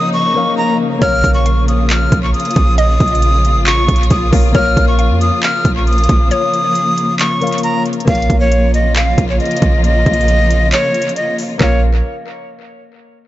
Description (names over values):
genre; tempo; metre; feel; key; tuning
hip hop, trap; 136 BPM; 4/4; half-time; Bb minor; A4 = 440 Hz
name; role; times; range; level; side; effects
breathy bright jazz flute; melody; 0.0-11.8 s; Db5 to F6; -17 LUFS; equal; tape echo
concert harp; accompaniment; 0.0-11.8 s; Bb3 to F5; -22 LUFS; left 4 dB; tape echo
warm symphonic string section; sustained chords; 0.0-11.8 s; Db3 to F4; -20 LUFS; left 2 dB; none
hollow square pluck; second line; 1.0-6.7 s; Db5 to F5; -22 LUFS; left 2 dB; chorus, tape echo
clean 808-style bass; bass; 1.0-12.0 s; Ab1 to F2; -14 LUFS; right 1 dB; none
trap drum kit; drums; 1.0-11.7 s; handclaps, hi-hat, kick drum; -16 LUFS; equal; vintage 12-bit sampler grit
room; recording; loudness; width
light reverb, studio reverb; echo-heavy mix, nothing above 7.8 kHz; -11 LUFS; side -15 dB against mid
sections
0.0-8.1 A section; 8.1-11.6 B section; 11.6-13.3 C section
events
break 6.3-8.1, 10.7-11.6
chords
0.0 Bbm